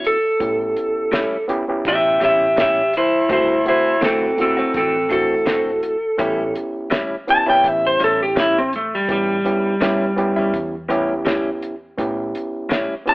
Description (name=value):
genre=straight-eighth soul blues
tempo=83 BPM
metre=4/4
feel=swing 55% on 16ths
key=A mixolydian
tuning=A4 = 442 Hz
part: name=electric guitar at the edge of break-up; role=melody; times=0.0-13.1 s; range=G3 to A5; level=-16 LUFS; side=equal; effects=none
part: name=overdriven reed electric piano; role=accompaniment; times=0.0-13.1 s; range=A3 to G4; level=-23 LUFS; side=right 1 dB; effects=none
part: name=vintage muted fingered electric bass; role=bass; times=0.0-12.3 s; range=A1 to A2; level=-37 LUFS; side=equal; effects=none
part: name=cloth-damped thuddy drum kit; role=drums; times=0.0-13.1 s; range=hi-hat, kick drum, snare drum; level=-26 LUFS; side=equal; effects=none
part: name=direct-recorded clean electric guitar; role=stabs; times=1.1-12.9 s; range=A2 to F#4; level=-24 LUFS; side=left 1 dB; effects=none
room=moderate stone room reverb, RT60 1.2 s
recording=band playing live in one room, telephone sound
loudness=-16 LUFS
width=side -23 dB against mid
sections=0.0-13.1 A section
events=clean electric guitar solo 0.0-13.1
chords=0.0 A7; 3.3 D7; 6.2 A7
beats=| 0.41 1.13 1.85 2.58 | 3.30 4.03 4.75 5.47 | 6.20 6.92 7.64 8.37 | 9.09 9.81 10.54 11.26 | 11.98 12.71